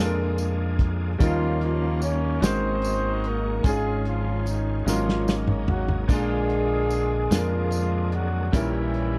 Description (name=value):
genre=slow gospel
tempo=49 BPM (dotted quarters)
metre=6/8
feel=straight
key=unclear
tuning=A4 = 442 Hz
part: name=mellow horn section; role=melody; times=0.0-9.2 s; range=Eb3 to Db5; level=-30 LUFS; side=equal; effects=none
part: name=clear grand piano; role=accompaniment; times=0.0-9.2 s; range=Ab2 to Bb4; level=-32 LUFS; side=equal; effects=none
part: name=bright tonewheel organ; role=sustained chords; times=0.0-9.2 s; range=D3 to Ab4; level=-38 LUFS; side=equal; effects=slow rotary speaker, chorus vibrato
part: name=deep dub fingered electric bass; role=bass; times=0.0-9.2 s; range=Ab1 to F2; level=-29 LUFS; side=equal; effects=none
part: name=warm soul drum kit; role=drums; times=0.4-9.1 s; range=crash cymbal, hi-hat, kick drum, snare drum, toms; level=-25 LUFS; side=equal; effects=none
part: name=tambourine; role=percussion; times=0.4-8.9 s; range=none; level=-42 LUFS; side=equal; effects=none
room=little or no reverb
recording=dry, close 1970s-style studio recording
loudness=-24 LUFS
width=mono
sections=0.0-9.2 A section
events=drum fill 4.9-6.1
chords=0.0 Bb7; 1.2 Eb9; 2.4 Ab9sus4; 3.6 Db/Ab; 4.9 Ab9sus4; 6.1 Bb7; 8.5 Eb7b9/Bb